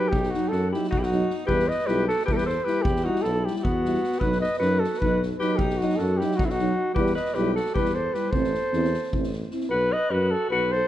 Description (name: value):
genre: balkan folk, Balkan brass band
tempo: 307 BPM (eighths)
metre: 7/8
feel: straight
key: unclear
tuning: A4 = 440 Hz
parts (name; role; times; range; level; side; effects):
- mellow flugelhorn; melody; 0.0-10.9 s; E4 to D#5; -26 LUFS; equal; none
- warm alto saxophone; second line; 0.0-10.9 s; B3 to B4; -31 LUFS; left 4 dB; none
- dark euphonium; accompaniment; 0.0-9.7 s; D#4 to E4; -32 LUFS; left 4 dB; none
- dark euphonium; accompaniment; 0.0-9.7 s; F#3 to C4; -31 LUFS; right 5 dB; none
- mellow tuba; bass; 0.1-10.8 s; A1 to F#2; -28 LUFS; equal; none
- street-band drum kit; percussion; 0.1-9.7 s; kick drum, snare drum; -31 LUFS; equal; none
room: light reverb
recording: dark, warm production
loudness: -22 LUFS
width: side -12 dB against mid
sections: 0.0-9.7 A section; 9.7-10.9 A section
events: none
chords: 0.0 B; 1.5 Em; 4.2 B; 7.0 Em; 8.3 Am; 9.7 B5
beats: | 0.12 0.31 0.51 0.70 0.90 1.09 1.29 | 1.49 1.68 1.88 2.07 2.27 2.46 2.66 | 2.85 3.05 3.24 3.44 3.63 3.83 4.03 | 4.22 4.42 4.61 4.81 5.00 5.20 5.39 | 5.59 5.78 5.98 6.17 6.37 6.57 6.76 | 6.96 7.15 7.35 7.54 7.74 7.93 8.13 | 8.33 8.52 8.72 8.91 9.11 9.31 9.50 | 9.70 9.89 10.09 10.29 10.48 10.68 10.88